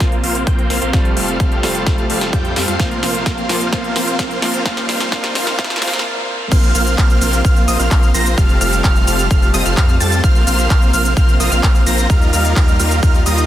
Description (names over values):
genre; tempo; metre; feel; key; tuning
EDM, festival progressive house; 129 BPM; 4/4; straight; unclear; A4 = 439 Hz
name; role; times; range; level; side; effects
bright concert grand piano; accompaniment; 0.0-6.5 s; Bb2 to F4; -25 LUFS; right 1 dB; sidechain pumping, tape echo
lush unison pad; sustained chords; 0.0-13.5 s; C3 to G4; -27 LUFS; equal; chorus, sidechain pumping
big supersaw lead; riff; 0.0-13.5 s; G3 to Bb5; -20 LUFS; equal; sidechain pumping, low-pass filter, tape echo
saturated sub bass; bass; 0.0-13.5 s; F1 to F2; -20 LUFS; equal; sidechain pumping
big-room dance drum kit; drums; 0.0-13.5 s; cabasa, crash cymbal, handclaps, hi-hat, snare drum; -22 LUFS; equal; overdrive, high-pass filter on snare, studio reverb, high-pass filter on hats, high-pass filter on cymbals, high-pass filter on perc
electronic kick drum; drums; 0.0-13.1 s; none; -14 LUFS; equal; overdrive, studio reverb
riser; sound effects; 2.5-6.1 s; none; -31 LUFS; equal; none
plucky unison lead; arpeggios; 6.5-13.5 s; Eb6 to Bb6; -21 LUFS; right 2 dB; lush chorus, sidechain pumping, tape echo
room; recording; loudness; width
light reverb; dense, heavily limited modern master, high-pass filter; -12 LUFS; side -12 dB against mid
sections
0.0-6.5 A section; 6.5-13.5 B section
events
build-up 0.0-6.5; drum fill 0.0-6.1; filter sweep 0.0-6.5; stop 6.1-6.5; drop 6.5-13.5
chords
0.0 Bbsus2; 0.9 Fadd9; 2.8 Bbsus2; 4.7 Ebadd9; 6.5 Bbsus2; 8.4 Fadd9; 10.2 Bbsus2; 12.1 Ebadd9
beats
0.01 0.47 | 0.94 1.40 1.86 2.33 | 2.79 3.26 3.73 4.19 | 4.66 5.12 5.59 6.05 | 6.52 6.98 7.45 7.91 | 8.38 8.84 9.31 9.77 | 10.24 10.70 11.17 11.63 | 12.10 12.56 13.03